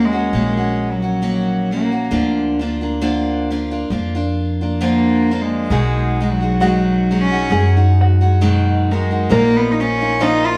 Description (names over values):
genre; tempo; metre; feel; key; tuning
acoustic folk duo or small band; 67 BPM; 4/4; swing 55% on 8ths; unclear; A4 = 440 Hz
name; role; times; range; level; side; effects
clear cello; second line; 0.0-10.6 s; F#3 to F4; -21 LUFS; equal; none
picked steel-string acoustic guitar; accompaniment; 0.0-10.6 s; Bb2 to Gb4; -22 LUFS; equal; none
upright bass; bass; 0.0-10.6 s; Bb1 to F#2; -21 LUFS; equal; none
open-back banjo; arpeggios; 5.7-10.6 s; F4 to Bb4; -25 LUFS; equal; none
room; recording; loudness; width
wet stone room reverb, RT60 1.0 s; band playing live in one room; -17 LUFS; mono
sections
0.0-10.6 A section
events
cello solo 0.0-10.6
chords
0.0 Ebm7; 2.1 Bb/D; 5.7 B6; 9.3 Bbsus4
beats
0.34 1.23 | 2.12 3.02 3.92 4.81 | 5.71 6.61 7.50 8.40 | 9.30 10.20